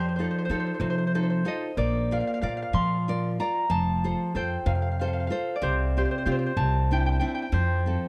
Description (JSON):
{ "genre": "italian folk, Italian serenade", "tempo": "62 BPM (dotted quarters)", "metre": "6/8", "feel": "straight", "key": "F major", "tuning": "A4 = 440 Hz", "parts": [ { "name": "Celtic harp", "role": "melody", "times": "0.0-8.1 s", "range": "C5 to C6", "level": "-32 LUFS", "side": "equal", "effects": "none" }, { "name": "nylon-string guitar", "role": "accompaniment", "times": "0.0-8.1 s", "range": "C3 to D5", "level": "-32 LUFS", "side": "equal", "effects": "none" }, { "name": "upright bass", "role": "bass", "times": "0.0-8.0 s", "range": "F1 to F3", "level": "-29 LUFS", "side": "equal", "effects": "none" } ], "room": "light reverb", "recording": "dark, warm production", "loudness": "-26 LUFS", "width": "mono", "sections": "0.0-8.1 A section", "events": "none", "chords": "0.0 F7; 1.8 Bb; 3.7 F; 5.6 Csus4; 6.6 Cadd9; 7.5 F" }